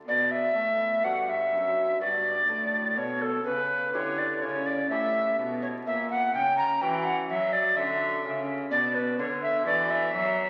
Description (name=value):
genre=classical, baroque-style sonata movement with continuo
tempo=62 BPM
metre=3/4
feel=straight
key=B minor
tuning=A4 = 443 Hz
part: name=lute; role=accompaniment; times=0.0-10.5 s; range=F#2 to G4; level=-38 LUFS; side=equal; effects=none
part: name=alto recorder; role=melody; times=0.1-10.5 s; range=A4 to A#5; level=-27 LUFS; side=equal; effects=none
part: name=rich cello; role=bass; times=0.1-10.5 s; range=F#2 to F#3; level=-36 LUFS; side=equal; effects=none
room=wet scoring stage reverb, RT60 1.7 s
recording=very old 78 rpm record, vinyl crackle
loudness=-27 LUFS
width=mono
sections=0.1-10.5 A section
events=none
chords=0.1 Bm; 3.0 C#m7b5/B; 5.9 F#7/A#; 8.7 Bm